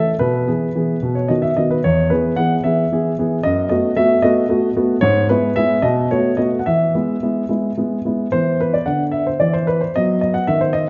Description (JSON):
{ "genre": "classical-period piano sonatina", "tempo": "75 BPM (dotted quarters)", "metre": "6/8", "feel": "straight", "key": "E major", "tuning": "A4 = 440 Hz", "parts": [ { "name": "warm baby grand piano", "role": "solo", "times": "0.0-10.9 s", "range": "E2 to F#5", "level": "-18 LUFS", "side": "equal", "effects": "none" } ], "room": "wet recital hall reverb, RT60 1.7 s", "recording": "nothing above 7.5 kHz", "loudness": "-18 LUFS", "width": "mono", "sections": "0.0-8.3 A section; 8.3-10.9 B section", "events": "none", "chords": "0.2 E/B; 1.0 B; 1.8 E; 3.4 B7/F#; 5.0 E/G#; 5.8 B5; 6.7 E; 8.3 E5; 9.9 B" }